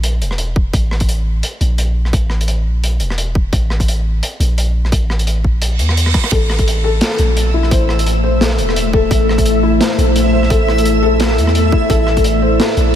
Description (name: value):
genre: half-time drum and bass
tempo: 172 BPM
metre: 4/4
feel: swing 56% on 16ths, half-time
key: unclear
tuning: A4 = 440 Hz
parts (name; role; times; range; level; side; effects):
- long sustained 808-style bass; bass; 0.0-13.0 s; E1 to E2; -15 LUFS; equal; none
- crunchy breakbeat drum kit; drums; 0.0-12.8 s; hi-hat, rim click, snare drum; -21 LUFS; equal; none
- electronic kick drum; drums; 0.6-12.2 s; none; -15 LUFS; equal; overdrive
- reverse cymbal; sound effects; 5.7-6.3 s; none; -24 LUFS; right 5 dB; none
- deep dark ambient pad; sustained chords; 7.3-13.0 s; A3 to D5; -18 LUFS; left 2 dB; chorus, built-in reverb, sidechain pumping
- felt-muted upright piano; arpeggios; 6.3-13.0 s; E4 to C5; -18 LUFS; left 4 dB; diffuse ambient delay
- backwards swelling texture; texture; 7.4-13.0 s; E5; -23 LUFS; right 3 dB; built-in reverb
room: light reverb, small room reverb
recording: none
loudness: -12 LUFS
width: side -10 dB against mid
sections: 0.0-13.0 A section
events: reverse cymbal 5.7-6.3; drum fill 6.1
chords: 0.0 Am